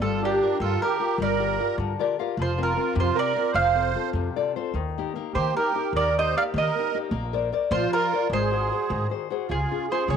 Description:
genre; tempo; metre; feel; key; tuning
italian folk, Italian serenade; 101 BPM (dotted quarters); 6/8; straight; unclear; A4 = 440 Hz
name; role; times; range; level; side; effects
mandolin; melody; 0.0-10.2 s; G4 to F5; -26 LUFS; right 2 dB; none
musette accordion; second line; 0.0-10.2 s; D4 to D5; -29 LUFS; right 11 dB; none
nylon-string guitar; accompaniment; 0.0-10.2 s; C3 to F5; -28 LUFS; left 10 dB; none
upright bass; bass; 0.0-10.2 s; F1 to Eb3; -28 LUFS; equal; none
room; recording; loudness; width
light reverb, studio ambience; 1960s-style stereo with parts hard left and right; -22 LUFS; side -7 dB against mid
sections
0.0-9.5 A section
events
nylon-string guitar fill 1.8-2.4, 4.2-4.8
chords
0.0 Gm7; 2.4 Fsus4; 3.6 F; 4.8 Eb; 7.1 Bbadd9; 8.3 Ab7; 9.5 Db

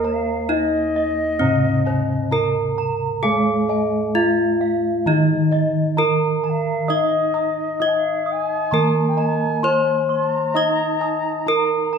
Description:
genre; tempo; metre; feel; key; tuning
Javanese gamelan; 66 BPM; 4/4; straight; Eb pelog barang; A4 = 444 Hz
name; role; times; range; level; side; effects
gamelan-type bronze metallophone; melody; 0.0-12.0 s; C4+20c to Eb5; -20 LUFS; equal; none
mellow bansuri; second line; 0.0-12.0 s; Bb4-35c to Bb5-49c; -26 LUFS; left 1 dB; none
gamelan-type bronze metallophone; accompaniment; 0.0-12.0 s; C3+20c to Eb4; -24 LUFS; right 1 dB; none
gamelan-type bossed gongs; arpeggios; 0.0-12.0 s; C5+20c to C6+20c; -29 LUFS; left 6 dB; none
gamelan-type bronze metallophone; arpeggios; 0.0-12.0 s; C5+20c to Eb6; -28 LUFS; right 5 dB; none
gamelan-type bossed gongs; bass; 0.0-12.0 s; Eb2 to Eb5; -27 LUFS; equal; none
room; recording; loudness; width
wet recital hall reverb, RT60 1.5 s; minimal, uncompressed stereo recording; -17 LUFS; side -6 dB against mid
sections
0.0-12.0 A section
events
none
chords
none

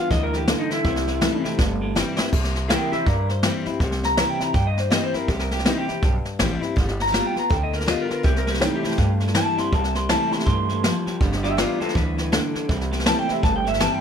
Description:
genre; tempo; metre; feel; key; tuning
rockabilly; 162 BPM; 4/4; swing 61% on 8ths; C major; A4 = 440 Hz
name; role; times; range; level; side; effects
electric guitar through a small old amp; melody; 0.0-14.0 s; Eb4 to C6; -25 LUFS; right 1 dB; tape echo
picked steel-string acoustic guitar; accompaniment; 0.0-14.0 s; G2 to F4; -26 LUFS; left 5 dB; none
electric guitar through a small old amp; riff; 0.0-2.3, 8.2-14.0 s; G2 to A3; -29 LUFS; right 3 dB; none
upright bass; bass; 0.1-13.9 s; G1 to G2; -26 LUFS; right 1 dB; none
jazz brush drum kit; drums; 0.1-13.9 s; crash cymbal, hi-hat, kick drum, snare drum; -24 LUFS; equal; none
room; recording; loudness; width
light reverb; none; -19 LUFS; side -7 dB against mid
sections
0.0-2.3 A section; 2.3-14.0 A section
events
clean electric guitar solo 0.0-14.0; drum fill 1.6-2.3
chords
0.0 G7; 0.8 C; 6.8 G7; 8.2 C; 11.2 G7; 12.7 C

